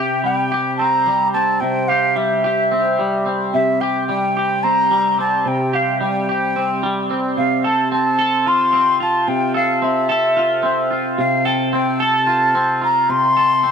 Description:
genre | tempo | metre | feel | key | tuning
rock | 220 BPM (eighths) | 7/8 | straight | C mixolydian | A4 = 440 Hz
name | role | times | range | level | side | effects
mellow silver concert flute | melody | 0.0-13.7 s | E5 to C6 | -17 LUFS | equal | tape echo
twangy electric guitar | riff | 0.0-13.7 s | C3 to A4 | -19 LUFS | equal | flanger, double-tracked left and right
room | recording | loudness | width
small room ambience | dry, close 1970s-style studio recording | -15 LUFS | side -6 dB against mid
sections
0.0-13.7 A section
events
none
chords
0.0 C5; 7.4 F/C

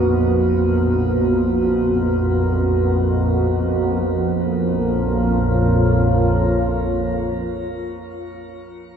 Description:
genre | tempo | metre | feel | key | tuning
dark ambient drone | free time | none | none | Bb phrygian | A4 = 440 Hz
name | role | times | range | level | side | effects
deep dark ambient pad | sustained chords | 0.0-8.2 s | Bb3 to Eb5 | -20 LUFS | right 1 dB | chorus, built-in reverb, shimmer reverb
organ-like drone | drone | 0.0-7.9 s | Bb1 to F2 | -19 LUFS | equal | ensemble chorus, built-in reverb
room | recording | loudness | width
wet plate reverb, RT60 3.0 s | dreamy mix soaked in reverb | -16 LUFS | side -7 dB against mid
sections
0.0-4.0 A section; 4.0-8.2 B section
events
none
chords
0.0 B/Bb; 4.0 Bbm

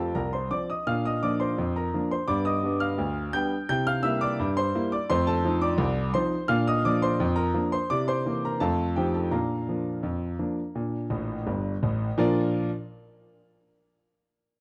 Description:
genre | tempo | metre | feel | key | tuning
ragtime piano | 85 BPM | 2/4 | straight | Bb major | A4 = 440 Hz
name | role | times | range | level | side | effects
clear concert grand piano | solo | 0.0-12.7 s | G1 to G6 | -27 LUFS | equal | none
room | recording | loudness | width
small room ambience | dry, close 1970s-style studio recording | -27 LUFS | mono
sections
0.0-12.2 A section; 12.2-13.6 B section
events
grand piano fill 11.1-12.2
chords
0.0 F; 0.9 Bb; 2.3 G7; 3.7 C7; 5.1 F7; 6.5 Bb; 7.9 C7; 8.6 F7; 9.3 Bb

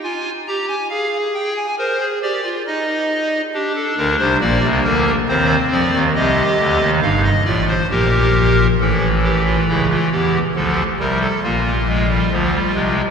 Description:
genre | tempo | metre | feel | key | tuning
classical, baroque-style 4-part fugue for pipe organ | 68 BPM | 3/4 | straight | C minor | A4 = 440 Hz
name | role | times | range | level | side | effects
pipe organ, clarinet reed | solo | 0.0-13.0 s | G1 to Bb5 | -15 LUFS | equal | none
room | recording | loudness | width
wet cathedral reverb, RT60 4.6 s | heard from further back in the room | -15 LUFS | side -6 dB against mid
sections
0.0-8.8 A section; 8.8-13.1 B section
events
none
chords
0.0 Fm; 0.9 Fm/Ab; 2.6 N.C.; 3.5 Gm (rootless); 5.3 Cm/Eb; 6.2 Cm; 7.9 Gm/Bb; 8.8 A7; 10.6 Dm; 11.4 Bb7

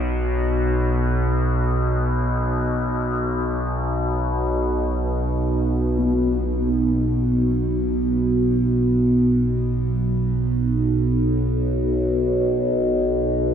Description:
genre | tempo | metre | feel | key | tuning
ambient | free time | none | none | unclear | A4 = 440 Hz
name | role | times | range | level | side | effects
overtone-sweeping drone | solo | 0.0-13.5 s | B1 to B2 | -19 LUFS | equal | chorus, built-in reverb, diffuse ambient delay
room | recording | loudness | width
wet huge ambient reverb, RT60 7.8 s | dark, warm production | -19 LUFS | side -8 dB against mid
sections
0.0-6.0 A section; 6.0-13.5 B section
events
none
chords
none

